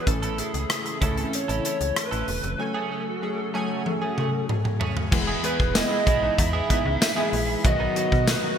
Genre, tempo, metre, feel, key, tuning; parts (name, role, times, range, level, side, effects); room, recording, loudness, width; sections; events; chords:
1980s-style pop; 95 BPM; 4/4; straight; E major; A4 = 440 Hz
lead guitar through a small cranked amp; melody; 0.0-8.6 s; G#4 to E5; -28 LUFS; right 2 dB; overdrive, wide subtle chorus, digital delay
chorused retro synth keys; accompaniment; 0.0-8.6 s; D#3 to G#5; -30 LUFS; left 2 dB
phased analog pad; sustained chords; 0.0-8.6 s; C#3 to D#6; -35 LUFS; equal; phaser, chorus
direct-recorded clean electric guitar; riff; 0.1-8.5 s; F#3 to A4; -33 LUFS; right 5 dB; lush chorus, digital delay
slap-like FM bass; bass; 0.1-8.4 s; E1 to B2; -28 LUFS; equal
modern studio drum kit; drums; 0.1-8.4 s; crash cymbal, hi-hat, kick drum, rim click, snare drum, tambourine, toms; -25 LUFS; equal; gated reverb
crunchy overdriven guitar; accompaniment; 5.1-8.6 s; B2 to E4; -35 LUFS; left 2 dB
mellow synth brass; stabs; 5.1-6.0 s; G#3 to B4; -35 LUFS; left 1 dB
moderate lush hall reverb, RT60 2.3 s; bright 1980s-style digital production; -22 LUFS; side -8 dB against mid
0.0-5.1 A section; 5.1-8.6 B section
drum fill 3.9-5.1
0.1 A; 2.6 F#madd9; 5.1 E; 7.6 B